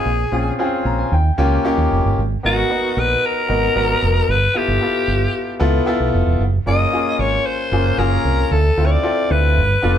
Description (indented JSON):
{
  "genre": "polished 1980s jazz-funk pop",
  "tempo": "114 BPM",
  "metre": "4/4",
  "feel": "straight",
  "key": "unclear",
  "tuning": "A4 = 440 Hz",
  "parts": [
    { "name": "raspy alto saxophone", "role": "melody", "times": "0.0-10.0 s", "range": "Gb4 to Eb5", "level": "-19 LUFS", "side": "left 2 dB", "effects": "none" },
    { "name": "clear baby grand piano", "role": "accompaniment", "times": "0.0-10.0 s", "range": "Bb3 to Bb5", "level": "-20 LUFS", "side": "left 2 dB", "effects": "none" },
    { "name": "fingered electric bass with an envelope filter", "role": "bass", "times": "0.1-10.0 s", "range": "E1 to Eb2", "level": "-18 LUFS", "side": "right 1 dB", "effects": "none" }
  ],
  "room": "moderate studio reverb, RT60 0.8 s",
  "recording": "band playing live in one room",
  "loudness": "-15 LUFS",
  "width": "side -9 dB against mid",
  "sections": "0.0-10.0 A section",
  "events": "grand piano fill 0.6-2.2",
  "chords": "0.1 Bbm7; 1.1 Eb7; 2.2 Abm7; 4.3 G13; 6.4 Gbmaj7; 8.5 Dm7"
}